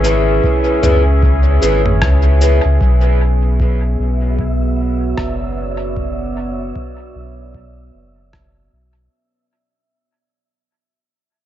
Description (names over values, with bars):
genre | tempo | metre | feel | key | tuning
ambient dub | 76 BPM | 4/4 | swing 60% on 16ths | B dorian | A4 = 440 Hz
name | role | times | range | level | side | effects
deep dark ambient pad | sustained chords | 0.0-9.1 s | B3 to E5 | -21 LUFS | right 1 dB | chorus, built-in reverb
electric guitar at the edge of break-up | stabs | 0.0-2.6 s | E4 to B4 | -19 LUFS | equal | analog chorus, dub echo
warm sub bass | bass | 0.0-9.1 s | F#1 to C#2 | -15 LUFS | equal | none
lo-fi sampler-style drum kit | drums | 0.0-8.5 s | cabasa, rim click, toms | -25 LUFS | equal | overdrive, dub echo
electronic kick drum | drums | 0.4-8.5 s | none | -20 LUFS | equal | none
wind-like tuned noise texture | texture | 3.4-9.1 s | E5 | -33 LUFS | right 1 dB | built-in reverb
room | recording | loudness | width
light reverb, digital ambience | nothing above 7.9 kHz | -12 LUFS | side -12 dB against mid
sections
0.0-2.8 A section; 2.8-9.1 B section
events
fade-out 2.8-9.1; filter sweep on sub bass 2.8-9.1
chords
0.0 C#m7; 2.8 Bmadd9